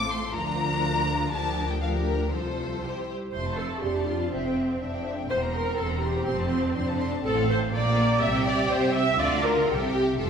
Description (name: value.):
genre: quick classical-period movement for string orchestra.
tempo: 123 BPM.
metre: 2/4.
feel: straight.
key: F major.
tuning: A4 = 438 Hz.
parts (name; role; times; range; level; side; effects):
rich studio violin section; melody; 0.0-10.3 s; Bb4 to D6; -33 LUFS; left 4 dB; none.
rich studio violin section; second line; 0.0-10.3 s; A3 to C5; -32 LUFS; left 2 dB; none.
warm studio viola section; accompaniment; 0.0-10.3 s; F3 to E5; -27 LUFS; equal; none.
clear studio cello section; bass; 0.0-10.3 s; C2 to D3; -31 LUFS; right 2 dB; none.
rich studio double bass section; bass; 0.0-10.3 s; E1 to D2; -31 LUFS; right 2 dB; none.
room: wet recital hall reverb, RT60 1.5 s.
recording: recorded in a church or concert hall.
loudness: -23 LUFS.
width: side -7 dB against mid.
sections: 0.0-3.3 A section; 3.3-10.3 B section.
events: none.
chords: 0.4 Bb/D; 2.3 F/C; 2.8 C; 3.3 F; 4.3 C/F; 5.3 C7/E; 6.3 F; 7.2 F/A; 7.7 Gm7/Bb; 8.2 C; 9.2 Dm; 9.7 C.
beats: | 0.35 0.84 | 1.32 1.82 | 2.32 2.83 | 3.33 3.83 | 4.32 4.81 | 5.30 5.79 | 6.28 6.76 | 7.24 7.72 | 8.21 8.69 | 9.18 9.68 | 10.18.